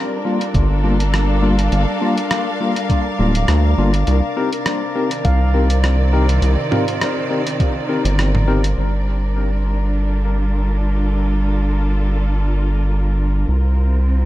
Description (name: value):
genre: ambient dub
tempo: 102 BPM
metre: 4/4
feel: swing 54% on 16ths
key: G minor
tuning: A4 = 440 Hz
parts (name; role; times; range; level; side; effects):
- dark studio string section; sustained chords; 0.0-14.3 s; C3 to F5; -23 LUFS; equal; none
- handpan; arpeggios; 0.0-1.3, 5.2-8.6 s; F4 to F5; -31 LUFS; right 4 dB; dub echo
- drifting glass-harmonics texture; texture; 0.1-8.8 s; D4 to D5; -28 LUFS; left 2 dB; chorus, built-in reverb
- tine electric piano; stabs; 0.2-8.6 s; G3 to Bb4; -23 LUFS; left 2 dB; medium tremolo, dub echo
- lo-fi sampler-style drum kit; drums; 0.4-8.8 s; hi-hat, rim click, toms; -24 LUFS; right 1 dB; low-pass filter on hats, small room reverb, low-pass filter on snare, low-pass filter on toms, dub echo
- round analog bass; bass; 0.5-14.3 s; D1 to D2; -16 LUFS; equal; tube saturation
- electronic kick drum; drums; 0.5-7.7 s; none; -18 LUFS; equal; small room reverb
room: light reverb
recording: echo-heavy mix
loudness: -15 LUFS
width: side -15 dB against mid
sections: 0.0-8.8 A section; 8.8-14.3 B section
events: none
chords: 0.0 Gm7; 4.1 Cm7; 8.8 Gm7; 13.5 C7(no3)